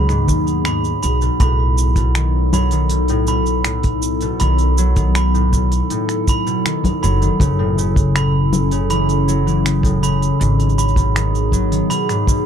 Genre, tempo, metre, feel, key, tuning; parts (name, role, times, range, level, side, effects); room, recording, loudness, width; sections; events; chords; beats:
folktronica; 80 BPM; 4/4; straight; B mixolydian; A4 = 440 Hz
glockenspiel with brass mallets; second line; 0.0-12.3 s; B5; -24 LUFS; right 7 dB; ping-pong delay, plate reverb
warbly tape-like pad; sustained chords; 0.0-12.5 s; F#3 to A4; -23 LUFS; equal; chorus, built-in reverb, phaser
concert harp; arpeggios; 0.0-12.5 s; G#2 to F#3; -20 LUFS; left 2 dB; ping-pong delay
upright bass; bass; 0.0-11.8 s; F#1 to D#2; -18 LUFS; equal
organic electronic drum kit; drums; 0.1-12.4 s; congas, finger snaps, hi-hat, shaker; -24 LUFS; left 1 dB
kick drum; drums; 0.3-12.4 s; -17 LUFS; equal
light reverb; dark, warm production; -14 LUFS; side -8 dB against mid
0.0-1.4 A section; 1.4-12.5 B section
0.0 G#m7; 1.4 B7; 7.4 F#m7; 10.4 G#m7
0.65 | 1.40 2.15 2.90 3.65 | 4.40 5.15 5.90 6.65 | 7.40 8.15 8.90 9.65 | 10.40 11.15 11.90